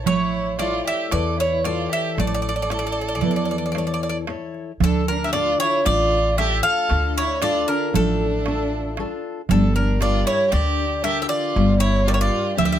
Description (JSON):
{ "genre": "greek folk, Greek bouzouki band", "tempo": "115 BPM (eighths)", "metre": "9/8", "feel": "straight", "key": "D harmonic minor", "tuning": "A4 = 440 Hz", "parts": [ { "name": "Greek bouzouki", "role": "melody", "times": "0.0-12.8 s", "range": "A4 to F5", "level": "-22 LUFS", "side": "right 1 dB", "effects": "none" }, { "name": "warm violin", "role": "second line", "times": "0.0-12.8 s", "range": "D4 to A4", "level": "-28 LUFS", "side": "right 4 dB", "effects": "none" }, { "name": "upright bass", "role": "bass", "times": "0.0-12.8 s", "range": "G1 to E2", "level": "-24 LUFS", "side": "equal", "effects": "none" }, { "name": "fingerpicked steel-string acoustic guitar", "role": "accompaniment", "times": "0.1-12.8 s", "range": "D3 to C#5", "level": "-26 LUFS", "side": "left 6 dB", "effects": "none" }, { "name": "darbuka", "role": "percussion", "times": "0.1-12.8 s", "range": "none", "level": "-25 LUFS", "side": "right 7 dB", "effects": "none" } ], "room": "light reverb", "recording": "close, detailed microphones", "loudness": "-18 LUFS", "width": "side -10 dB against mid", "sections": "0.0-4.8 A section; 4.8-12.8 B section", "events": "speeding up 0.0-12.8", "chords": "0.1 A; 4.8 Dm; 9.5 Gm", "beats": "| 0.07 0.60 1.13 1.66 2.19 2.71 3.24 3.76 4.29 | 4.81 5.34 5.86 6.38 6.90 7.42 7.94 8.46 8.98 | 9.50 10.01 10.53 11.04 11.56 12.07 12.59" }